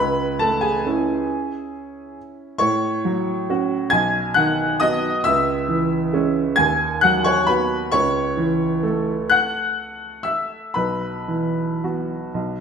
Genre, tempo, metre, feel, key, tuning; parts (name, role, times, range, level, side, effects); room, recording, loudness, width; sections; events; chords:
classical, piano waltz; 109-142 BPM; 3/4; rubato; A4 = 440 Hz
clear upright piano; solo; 0.0-12.6 s; B1 to G#6; -18 LUFS; equal
wet stone room reverb, RT60 1.3 s; -18 LUFS; side -6 dB against mid
0.0-12.6 A section
0.0 A/C#; 2.6 F#m/A; 3.9 B; 5.2 C#m; 6.6 B/D#; 7.9 A/C#; 10.8 Bsus4